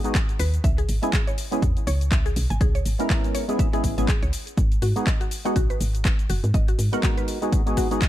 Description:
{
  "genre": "deep house",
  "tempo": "122 BPM",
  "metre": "4/4",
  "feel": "swing 58% on 16ths",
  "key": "G# minor",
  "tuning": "A4 = 440 Hz",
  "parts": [
    { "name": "percussive organ stab", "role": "stabs", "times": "0.0-8.0 s", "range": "G#3 to A#4", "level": "-26 LUFS", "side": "equal", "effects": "analog chorus, sidechain pumping, ping-pong delay" },
    { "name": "house drum kit", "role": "drums", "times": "0.0-8.1 s", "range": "handclaps, hi-hat, shaker", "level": "-32 LUFS", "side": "left 1 dB", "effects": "none" },
    { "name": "electronic kick drum", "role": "drums", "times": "0.1-8.1 s", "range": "none", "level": "-22 LUFS", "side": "equal", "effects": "none" },
    { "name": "mallet-like synth pluck", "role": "arpeggios", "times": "0.4-8.1 s", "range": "F#4 to G#5", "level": "-33 LUFS", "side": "left 2 dB", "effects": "chorus, phaser, vintage 12-bit sampler grit, sidechain pumping, dub echo" },
    { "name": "woody FM bass", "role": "bass", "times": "0.4-6.9 s", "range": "F#1 to G#2", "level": "-24 LUFS", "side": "equal", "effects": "tube saturation, sidechain pumping" }
  ],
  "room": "little or no reverb",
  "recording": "dark, warm production",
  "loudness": "-20 LUFS",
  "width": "side -13 dB against mid",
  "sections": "0.0-8.1 A section",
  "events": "none",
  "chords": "0.0 G#m7; 0.6 C#m7; 4.6 G#m7"
}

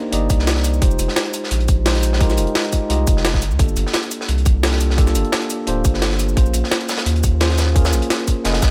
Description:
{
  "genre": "liquid drum and bass",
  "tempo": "173 BPM",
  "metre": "4/4",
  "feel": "swing 54% on 16ths",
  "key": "unclear",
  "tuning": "A4 = 440 Hz",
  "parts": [
    { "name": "mellow tine electric piano", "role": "accompaniment", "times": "0.0-8.7 s", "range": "Ab3 to Eb5", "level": "-25 LUFS", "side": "equal", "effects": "dub echo" },
    { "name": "saturated sub bass", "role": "bass", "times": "0.1-8.7 s", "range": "D1 to Eb2", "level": "-21 LUFS", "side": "equal", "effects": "none" },
    { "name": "crunchy breakbeat drum kit", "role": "drums", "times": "0.1-8.7 s", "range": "hi-hat, snare drum", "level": "-28 LUFS", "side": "equal", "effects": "high-pass filter on hats, high-pass filter on snare, high-pass filter on room" },
    { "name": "jungle sampler-style drum kit", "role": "drums", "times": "0.1-8.7 s", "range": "cabasa, hi-hat, snare drum", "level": "-26 LUFS", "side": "equal", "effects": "none" },
    { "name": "electronic kick drum", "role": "drums", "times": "0.3-8.7 s", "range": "none", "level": "-18 LUFS", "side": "equal", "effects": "none" }
  ],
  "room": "studio reverb",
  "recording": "none",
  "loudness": "-18 LUFS",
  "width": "mono",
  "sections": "0.0-8.7 A section",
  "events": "none",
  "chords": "0.0 Cm9; 0.8 Fm9; 3.4 Gm9; 6.4 Bbm9"
}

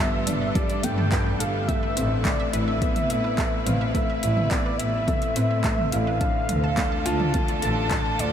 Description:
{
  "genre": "piano and strings electronica",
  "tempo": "106 BPM",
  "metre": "4/4",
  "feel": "straight",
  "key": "unclear",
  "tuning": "A4 = 440 Hz",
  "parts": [
    { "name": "warm velvety synth lead", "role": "melody", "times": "0.0-8.3 s", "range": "D5 to A5", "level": "-28 LUFS", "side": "equal", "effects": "chorus, diffuse ambient delay, shimmer reverb" },
    { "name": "clear studio string section", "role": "sustained chords", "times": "0.0-8.3 s", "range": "D3 to B4", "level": "-33 LUFS", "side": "left 1 dB", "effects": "sidechain pumping, shimmer reverb" },
    { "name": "analog pluck", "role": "arpeggios", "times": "0.0-8.3 s", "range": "A4 to A5", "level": "-38 LUFS", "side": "right 2 dB", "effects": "none" },
    { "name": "dark concert grand piano", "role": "riff", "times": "0.0-8.3 s", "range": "G3 to A4", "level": "-28 LUFS", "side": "left 1 dB", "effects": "diffuse ambient delay, shimmer reverb" },
    { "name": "clear studio double bass section", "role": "bass", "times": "0.3-8.3 s", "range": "G1 to A2", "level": "-27 LUFS", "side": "equal", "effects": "sidechain pumping" },
    { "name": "deep house drum kit", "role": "drums", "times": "0.3-8.3 s", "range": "handclaps, hi-hat, toms", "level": "-30 LUFS", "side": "right 1 dB", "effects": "overdrive" },
    { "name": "electronic kick drum", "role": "drums", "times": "0.6-8.0 s", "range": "none", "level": "-27 LUFS", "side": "equal", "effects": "overdrive" }
  ],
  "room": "moderate huge ambient reverb, RT60 7.9 s",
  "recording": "dreamy mix soaked in reverb",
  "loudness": "-21 LUFS",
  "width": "side -9 dB against mid",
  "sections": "0.0-8.3 A section",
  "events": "none",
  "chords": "0.0 Gadd9; 1.7 Amadd9; 6.2 Dm"
}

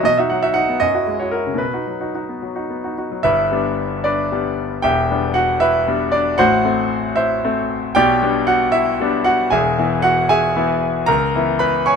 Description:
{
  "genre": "classical, romantic character piece for solo piano",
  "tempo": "76 BPM (dotted quarters)",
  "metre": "6/8",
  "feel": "rubato",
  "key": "G major from 3.2 s",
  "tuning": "A4 = 440 Hz",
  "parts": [
    { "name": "bright concert grand piano", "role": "solo", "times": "0.0-12.0 s", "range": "E1 to C#6", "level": "-15 LUFS", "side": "equal", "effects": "none" }
  ],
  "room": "little or no reverb",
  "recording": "close, detailed microphones",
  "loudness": "-15 LUFS",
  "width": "side -6 dB against mid",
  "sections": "0.0-3.2 A section; 3.2-12.0 B section",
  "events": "none",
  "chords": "0.1 B; 0.8 F#sus2; 1.6 B; 3.2 G; 4.8 Em7; 6.4 Am; 8.0 G/B; 9.5 E; 11.1 C#m7"
}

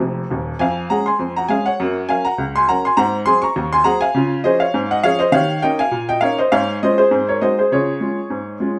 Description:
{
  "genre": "ragtime piano",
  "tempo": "101 BPM",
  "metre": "2/4",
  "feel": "swing 54% on 16ths",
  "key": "Db major",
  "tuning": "A4 = 440 Hz",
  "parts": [
    { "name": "clear upright piano", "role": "solo", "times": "0.0-8.8 s", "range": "Eb1 to Db6", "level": "-18 LUFS", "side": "equal", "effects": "none" }
  ],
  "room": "moderate studio reverb, RT60 0.6 s",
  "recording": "band playing live in one room",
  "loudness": "-18 LUFS",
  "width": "mono",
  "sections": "0.0-8.8 A section",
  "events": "upright piano fill 0.0-0.6",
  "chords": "0.0 Ab (rootless); 0.6 Db/F; 1.8 Gb; 3.0 Ab7; 4.2 Db; 5.3 Eb7; 6.5 Db/Ab; 7.1 Ab7; 7.7 Db"
}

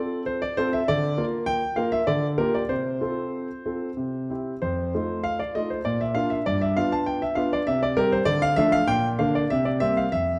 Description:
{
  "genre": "classical-period piano sonatina",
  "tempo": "98 BPM",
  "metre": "3/4",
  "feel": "rubato",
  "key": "F major",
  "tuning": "A4 = 440 Hz",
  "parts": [
    { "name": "clear grand piano", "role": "solo", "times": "0.0-10.4 s", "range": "F2 to A5", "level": "-25 LUFS", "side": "equal", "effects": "none" }
  ],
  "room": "wet recital hall reverb, RT60 1.4 s",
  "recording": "dark, warm production",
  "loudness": "-25 LUFS",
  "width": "mono",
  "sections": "0.0-10.4 A section",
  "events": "none",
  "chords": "0.0 F; 0.9 Bb/D; 2.1 Gm7/D; 2.7 F/C; 4.0 C; 4.6 F7; 5.8 Bb; 6.5 G7; 7.7 C5; 8.3 Dm; 8.9 Bb; 9.5 C5"
}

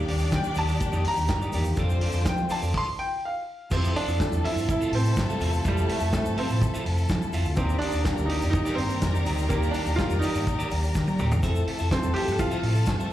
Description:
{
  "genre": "disco",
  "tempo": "124 BPM",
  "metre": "4/4",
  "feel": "straight",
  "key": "F major",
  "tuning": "A4 = 440 Hz",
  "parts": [
    { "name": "clear symphonic string section", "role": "second line", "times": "0.0-13.1 s", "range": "C4 to Bb5", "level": "-36 LUFS", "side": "left 3 dB", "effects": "slapback echo" },
    { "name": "barky tine electric piano", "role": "accompaniment", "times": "0.0-13.1 s", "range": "Eb3 to E5", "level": "-34 LUFS", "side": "left 2 dB", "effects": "medium stereo tremolo, slapback echo" },
    { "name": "clean electric guitar", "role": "accompaniment", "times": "0.0-13.1 s", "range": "Eb4 to E5", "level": "-36 LUFS", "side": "right 2 dB", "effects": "slapback echo" },
    { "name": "dark studio string section", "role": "sustained chords", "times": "0.0-13.1 s", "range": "C3 to D5", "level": "-35 LUFS", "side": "left 1 dB", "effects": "none" },
    { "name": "overdriven fingered electric bass", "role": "bass", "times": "0.1-13.0 s", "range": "D2 to F3", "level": "-26 LUFS", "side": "equal", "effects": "none" },
    { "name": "warm soul drum kit", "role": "drums", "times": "0.1-13.0 s", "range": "crash cymbal, hi-hat, kick drum, snare drum, toms", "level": "-29 LUFS", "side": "equal", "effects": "none" },
    { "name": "tube shaker", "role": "percussion", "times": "0.2-13.1 s", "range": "none", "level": "-48 LUFS", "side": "left 3 dB", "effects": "none" },
    { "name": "clear baby grand piano", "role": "melody", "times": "0.4-13.1 s", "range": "G3 to C6", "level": "-29 LUFS", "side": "right 2 dB", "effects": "slapback echo" }
  ],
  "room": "studio reverb",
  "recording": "live gig heard through the venue's PA, club reverb",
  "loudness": "-23 LUFS",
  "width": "side -13 dB against mid",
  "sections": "0.0-3.7 A section; 3.7-13.1 B section",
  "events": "grand piano solo 0.0-3.7; stop 2.7-3.7; drum fill 10.9-11.4",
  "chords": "0.0 Ebmaj7; 1.8 F6; 3.7 Fmaj7; 7.6 Ebmaj7; 11.4 Fmaj7"
}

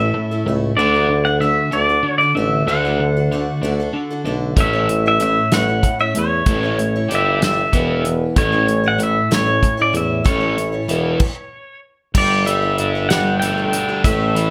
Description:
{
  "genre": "folk rock and heartland rock",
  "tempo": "63 BPM (dotted quarters)",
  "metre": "6/8",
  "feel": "straight",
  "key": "D major",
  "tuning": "A4 = 437 Hz",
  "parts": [
    { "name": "pedal steel guitar", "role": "melody", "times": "0.0-14.5 s", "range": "C#5 to G5", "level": "-22 LUFS", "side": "equal", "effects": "plate reverb" },
    { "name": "picked steel-string acoustic guitar", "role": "accompaniment", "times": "0.0-14.5 s", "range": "A2 to D5", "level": "-28 LUFS", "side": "equal", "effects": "none" },
    { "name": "overdriven electric guitar", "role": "riff", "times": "0.0-14.5 s", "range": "A2 to G4", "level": "-24 LUFS", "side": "equal", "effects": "none" },
    { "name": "warm tuba", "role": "bass", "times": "0.0-14.5 s", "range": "E1 to E2", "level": "-23 LUFS", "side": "equal", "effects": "none" },
    { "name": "natural country drum kit", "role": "drums", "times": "4.6-14.5 s", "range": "crash cymbal, hi-hat, kick drum, snare drum", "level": "-21 LUFS", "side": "equal", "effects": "none" }
  ],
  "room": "light reverb",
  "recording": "none",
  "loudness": "-17 LUFS",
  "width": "mono",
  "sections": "0.0-12.2 A section; 12.2-14.5 B section",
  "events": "stop 11.2-12.2",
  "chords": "0.0 A; 0.8 D; 4.6 A; 7.1 G5; 7.7 E5; 8.4 A; 10.9 E5; 11.5 N.C.; 12.2 Gsus2"
}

